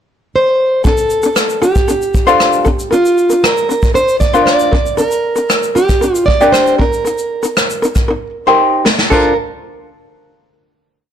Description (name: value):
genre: acoustic pop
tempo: 116 BPM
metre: 4/4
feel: straight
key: unclear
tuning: A4 = 440 Hz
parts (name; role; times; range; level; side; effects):
- fingerpicked plugged-in steel-string acoustic guitar; melody; 0.4-9.4 s; F4 to D5; -14 LUFS; right 2 dB; plate reverb
- ukulele; accompaniment; 0.8-9.3 s; D4 to D5; -13 LUFS; left 2 dB; plate reverb
- soft brush drum kit; drums; 0.8-9.2 s; crash cymbal, kick drum, rim click, shaker, snare drum; -15 LUFS; equal; none
room: moderate studio ambience, RT60 0.4 s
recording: blown-out, overdriven recording, overdrive, lossy compression artefacts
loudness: -10 LUFS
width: side -9 dB against mid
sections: 0.0-0.9 pickup bar; 0.9-9.1 verse; 9.1-11.1 final chord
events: drum fill 8.1-9.1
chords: 0.0 N.C.; 0.9 Dm7; 2.9 Bbadd9/D; 4.7 Gm; 7.1 Eb6; 9.1 Dm7